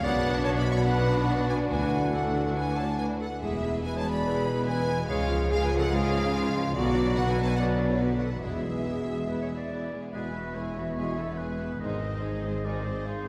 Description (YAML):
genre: cinematic, heroic adventure film score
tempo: 143 BPM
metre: 4/4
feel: straight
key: E mixolydian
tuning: A4 = 437 Hz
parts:
  - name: warm symphonic violin section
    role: melody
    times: 0.0-13.3 s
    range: B#4 to C#6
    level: -38 LUFS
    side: equal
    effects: none
  - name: clear clarinet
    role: second line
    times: 0.0-13.3 s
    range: E4 to F#5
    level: -38 LUFS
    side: equal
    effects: none
  - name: mellow hollow silver concert flute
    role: second line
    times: 0.0-13.3 s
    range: E4 to F5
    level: -38 LUFS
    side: equal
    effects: none
  - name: rich symphonic violin section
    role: second line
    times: 0.0-13.3 s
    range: B3 to B#4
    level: -42 LUFS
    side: equal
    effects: none
  - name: clear studio viola section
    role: accompaniment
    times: 0.0-13.3 s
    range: D3 to D#4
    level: -39 LUFS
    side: equal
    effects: none
  - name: clear trombone section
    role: sustained chords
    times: 0.0-12.8 s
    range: F#2 to B3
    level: -38 LUFS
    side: equal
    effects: none
  - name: warm French horn section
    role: sustained chords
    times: 0.0-12.8 s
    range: B3 to G#4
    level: -38 LUFS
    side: equal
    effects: none
  - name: rich symphonic cello section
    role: bass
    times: 0.0-13.3 s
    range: D2 to C#3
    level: -35 LUFS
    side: equal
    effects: none
  - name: rich symphonic double bass section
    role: bass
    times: 0.0-13.3 s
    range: E1 to D2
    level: -34 LUFS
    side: equal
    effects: none
  - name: warm oboe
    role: second line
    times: 10.1-13.3 s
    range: B4 to D#5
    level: -42 LUFS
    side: equal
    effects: none
room: wet concert hall reverb, RT60 2.2 s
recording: heard from further back in the room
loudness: -28 LUFS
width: mono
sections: 0.0-10.1 A section; 10.1-13.3 B section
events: build-up 10.1-13.3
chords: 0.0 Bm; 1.7 D; 3.4 E; 5.1 C#; 6.8 Bm; 8.4 E; 11.8 G#